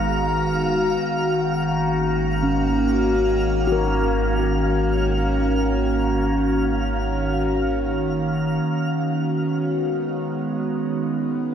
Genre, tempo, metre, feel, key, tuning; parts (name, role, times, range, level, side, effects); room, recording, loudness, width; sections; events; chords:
ambient; free time; A4 = 441 Hz
evolving wavetable pad; sustained chords; 0.0-11.5 s; D#3 to A#5; -21 LUFS; equal; phaser, built-in reverb, shimmer reverb
handpan; arpeggios; 0.0-6.3 s; C#4 to B4; -29 LUFS; left 2 dB; tape echo, shimmer reverb
warm sub bass; bass; 0.0-8.6 s; G#1; -26 LUFS; equal
analog drone; drone; 0.3-8.7 s; barely audible
twinkling granular texture; texture; 0.0-8.7 s; E#5 to E#6; -30 LUFS; right 2 dB; built-in reverb, shimmer reverb
wet huge ambient reverb, RT60 8.0 s; -19 LUFS; side -8 dB against mid
0.0-8.6 A section; 8.6-11.5 B section
0.0 C#9sus4/G#; 8.6 G#m7